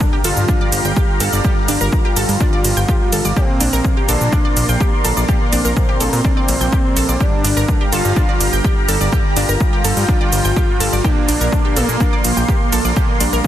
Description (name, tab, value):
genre	melodic techno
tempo	125 BPM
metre	4/4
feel	straight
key	G minor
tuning	A4 = 445 Hz
part	fat analog lead	melody	0.0-13.5 s	G3 to F4	-23 LUFS	left 1 dB	tape echo
part	lush unison pad	sustained chords	0.1-13.5 s	G4 to C6	-25 LUFS	left 1 dB	chorus, phaser, sidechain pumping
part	analog synth brass	stabs	0.0-13.5 s	G2 to Bb3	-24 LUFS	right 4 dB	chorus, sidechain pumping, dub echo
part	electronic kick drum	drums	0.0-13.5 s	none	-17 LUFS	equal	overdrive
part	house drum kit	drums	0.0-13.5 s	hi-hat, ride cymbal, shaker	-23 LUFS	right 2 dB	overdrive
part	impact	sound effects	0.0-1.4 s	none	-34 LUFS	left 1 dB	none
part	wide unison pluck	arpeggios	0.1-13.4 s	D4 to G6	-23 LUFS	equal	cassette tape, sidechain pumping, dub echo
part	fat analog bass	bass	0.2-13.4 s	G1 to Bb2	-18 LUFS	equal	sidechain pumping
room	digital ambience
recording	dense, heavily limited modern master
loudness	-13 LUFS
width	side -12 dB against mid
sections	0.0-13.5 A section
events	impact 0.0-1.4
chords	0.0 Gm7; 3.4 Bbadd9; 7.2 Gm7; 11.0 Bbadd9